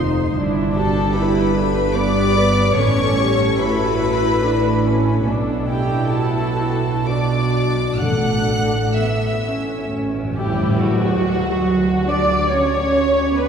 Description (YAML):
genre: classical, slow romantic movement for symphony orchestra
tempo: 60-76 BPM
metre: 3/4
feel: rubato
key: D major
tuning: A4 = 440 Hz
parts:
  - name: warm chamber violin section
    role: melody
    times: 0.0-13.5 s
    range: F#4 to F#6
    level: -27 LUFS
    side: left 3 dB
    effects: none
  - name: warm chamber violin section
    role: second line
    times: 0.0-13.5 s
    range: F#4 to F#5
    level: -24 LUFS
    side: left 1 dB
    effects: none
  - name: dark chamber viola section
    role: accompaniment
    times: 0.0-13.5 s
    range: B3 to D5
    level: -23 LUFS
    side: right 1 dB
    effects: none
  - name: dark French horn section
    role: sustained chords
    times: 0.0-10.4 s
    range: D4 to B4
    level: -24 LUFS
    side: left 3 dB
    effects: none
  - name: clear chamber double bass section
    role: bass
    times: 0.0-13.5 s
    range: F1 to D2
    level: -24 LUFS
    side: right 3 dB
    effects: none
  - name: warm studio cello section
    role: bass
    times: 0.0-13.5 s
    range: F2 to D4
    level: -22 LUFS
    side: right 2 dB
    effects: none
  - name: timpani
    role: percussion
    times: 2.8-4.0, 8.0-10.8 s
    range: A2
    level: -25 LUFS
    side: left 1 dB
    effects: none
  - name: cymbal swell and tam-tam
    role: percussion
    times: 8.0-13.5 s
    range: none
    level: -29 LUFS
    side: left 2 dB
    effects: none
room: wet church reverb, RT60 3.4 s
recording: heard from further back in the room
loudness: -16 LUFS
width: side -7 dB against mid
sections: 0.0-10.8 A section; 10.8-13.5 B section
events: timpani fill 9.9-10.8; band accent 10.8-11.7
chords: 0.4 Em7/G; 2.8 A; 5.3 Bm7; 8.0 Asus4; 9.9 A; 10.8 D